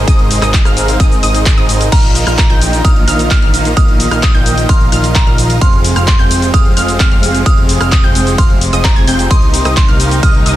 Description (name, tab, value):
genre	EDM, festival progressive house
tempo	130 BPM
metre	4/4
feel	straight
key	unclear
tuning	A4 = 441 Hz
part	rich symphonic string section	sustained chords	0.0-10.6 s	C3 to Eb4	-21 LUFS	left 1 dB	sidechain pumping
part	wide unison pluck	arpeggios	0.0-10.6 s	Eb6 to Ab6	-21 LUFS	equal	cassette tape, sidechain pumping, digital delay
part	dense compressed supersaw	riff	0.0-10.6 s	C4 to Ab5	-18 LUFS	right 1 dB	sidechain pumping, digital delay
part	fat analog bass	bass	0.0-10.6 s	F1 to C2	-16 LUFS	equal	sidechain pumping
part	big-room dance drum kit	drums	0.1-10.6 s	cabasa, crash cymbal, handclaps, hi-hat, ride cymbal, rim click	-18 LUFS	left 1 dB	small room ambience
part	electronic kick drum	drums	0.1-10.3 s	none	-10 LUFS	equal	small room ambience
part	glassy synth bell	melody	1.9-10.6 s	Bb5 to F6	-20 LUFS	right 3 dB	chorus, tremolo, digital delay
room	digital ambience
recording	dense, heavily limited modern master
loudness	-8 LUFS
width	side -14 dB against mid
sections	0.0-10.6 A section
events	none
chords	0.0 Abadd9; 1.9 Bbsus4; 5.6 Fm; 9.3 Cm7